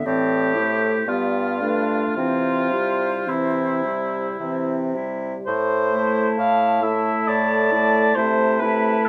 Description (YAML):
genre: classical, slow romantic movement for wind quintet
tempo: 53-68 BPM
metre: 3/4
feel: rubato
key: C major, A minor from 5.5 s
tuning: A4 = 440 Hz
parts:
  - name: mellow silver concert flute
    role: melody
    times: 0.0-9.1 s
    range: B4 to A5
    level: -30 LUFS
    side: equal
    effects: none
  - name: clear clarinet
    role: accompaniment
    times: 0.0-9.1 s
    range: B3 to E4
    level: -30 LUFS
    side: equal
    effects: none
  - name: warm French horn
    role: accompaniment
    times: 0.0-9.1 s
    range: E3 to A3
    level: -29 LUFS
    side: equal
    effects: none
  - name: warm oboe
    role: second line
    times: 0.1-9.1 s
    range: E4 to F5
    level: -25 LUFS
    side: equal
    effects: none
  - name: clear bassoon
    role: bass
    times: 0.1-9.0 s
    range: G2 to C3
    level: -27 LUFS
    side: equal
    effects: none
room: light reverb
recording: none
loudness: -21 LUFS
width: mono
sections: 0.0-5.5 A section; 5.5-9.1 B section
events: none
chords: 0.1 Am; 1.1 G9; 2.2 C; 5.5 Am; 8.2 Am/C